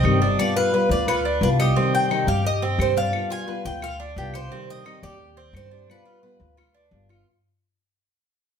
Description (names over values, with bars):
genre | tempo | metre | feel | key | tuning
latin, Cuban son and guajira | 175 BPM | 4/4 | straight | unclear | A4 = 439 Hz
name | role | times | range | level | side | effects
Cuban tres | melody | 0.0-6.9 s | G4 to Ab5 | -25 LUFS | left 1 dB | none
nylon-string guitar | accompaniment | 0.0-7.3 s | C3 to G4 | -26 LUFS | left 2 dB | none
Cuban tres | arpeggios | 0.0-7.3 s | C4 to B4 | -29 LUFS | right 4 dB | none
upright bass | bass | 0.0-7.2 s | G1 to G2 | -24 LUFS | left 1 dB | none
claves | percussion | 0.0-7.3 s | none | -34 LUFS | left 5 dB | none
room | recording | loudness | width
wet studio reverb, RT60 0.8 s | heard from further back in the room | -19 LUFS | side -7 dB against mid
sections
0.0-7.3 A section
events
fade-out 0.0-7.3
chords
0.4 G7; 1.8 Cm; 3.1 G7; 4.5 Cm; 5.9 G7